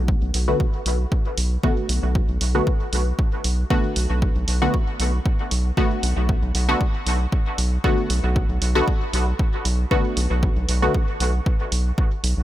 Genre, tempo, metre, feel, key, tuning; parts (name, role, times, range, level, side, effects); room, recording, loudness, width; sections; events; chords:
dub techno; 116 BPM; 4/4; swing 53% on 16ths; B minor; A4 = 440 Hz
filtered dub chord stab; stabs; 0.0-11.0 s; D3 to F#4; -25 LUFS; left 1 dB; chorus, phaser, dub echo
round analog bass; bass; 0.0-12.4 s; B1; -21 LUFS; equal; tube saturation, sidechain pumping
electronic kick drum; drums; 0.1-12.1 s; -21 LUFS; equal
electronic hi-hat; drums; 0.3-12.3 s; -28 LUFS; right 3 dB
little or no reverb; -19 LUFS; side -14 dB against mid
0.0-12.4 A section
0.0 Bm7